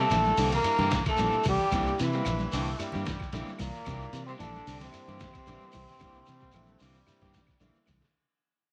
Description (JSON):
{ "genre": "afrobeat", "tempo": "112 BPM", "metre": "4/4", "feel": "straight", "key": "C mixolydian", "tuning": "A4 = 438 Hz", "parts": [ { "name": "trombone with metal mute", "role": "melody", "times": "0.0-7.6 s", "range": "Bb3 to Bb4", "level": "-33 LUFS", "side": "equal", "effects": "none" }, { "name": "raspy tenor saxophone", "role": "second line", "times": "0.0-7.6 s", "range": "Bb2 to Bb3", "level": "-39 LUFS", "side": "equal", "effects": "none" }, { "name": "electric guitar at the edge of break-up", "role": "arpeggios", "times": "0.0-8.0 s", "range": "Bb2 to G3", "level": "-41 LUFS", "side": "equal", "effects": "none" }, { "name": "electric guitar at the edge of break-up", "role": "stabs", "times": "0.0-7.8 s", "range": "E3 to G4", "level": "-42 LUFS", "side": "equal", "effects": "none" }, { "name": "fingered electric bass", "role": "bass", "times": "0.0-8.0 s", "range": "Bb1 to C3", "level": "-35 LUFS", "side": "equal", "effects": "none" }, { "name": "overdriven reed electric piano", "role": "accompaniment", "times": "0.1-7.9 s", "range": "G3 to E4", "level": "-44 LUFS", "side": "equal", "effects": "none" }, { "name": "trip hop sampler-style drum kit", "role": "drums", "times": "0.1-8.1 s", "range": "hi-hat, kick drum, ride cymbal, snare drum", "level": "-39 LUFS", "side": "equal", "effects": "overdrive" }, { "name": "claves", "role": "percussion", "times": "0.1-8.0 s", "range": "none", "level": "-51 LUFS", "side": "equal", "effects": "none" }, { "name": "congas", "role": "percussion", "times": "0.1-8.1 s", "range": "none", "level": "-42 LUFS", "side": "equal", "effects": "none" }, { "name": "shekere", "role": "percussion", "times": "0.1-8.1 s", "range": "none", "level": "-44 LUFS", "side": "equal", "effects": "none" }, { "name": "muted trombone section", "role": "second line", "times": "2.5-7.9 s", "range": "E3 to A3", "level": "-48 LUFS", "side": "equal", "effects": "none" } ], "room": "light reverb, small room reverb", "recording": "none", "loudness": "-28 LUFS", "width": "mono", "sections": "0.0-8.1 A section", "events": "fade-out 0.0-8.1; drum fill 7.6-8.1", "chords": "0.0 C7" }